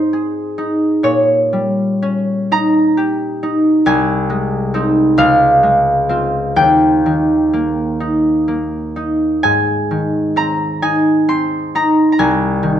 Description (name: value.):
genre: classical, solo harp piece.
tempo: 40-46 BPM (dotted quarters).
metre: 6/8.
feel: rubato.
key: Ab major.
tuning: A4 = 440 Hz.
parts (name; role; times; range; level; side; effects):
concert harp; solo; 0.0-12.8 s; C2 to C6; -12 LUFS; equal; none.
room: light reverb.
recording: none.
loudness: -12 LUFS.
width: side -10 dB against mid.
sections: 0.0-12.8 A section.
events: none.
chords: 0.0 Ab; 1.0 Eb7/Bb; 3.9 Ab/C; 5.2 Dbmaj7; 6.6 Eb; 9.4 Ab; 12.2 Ab/C.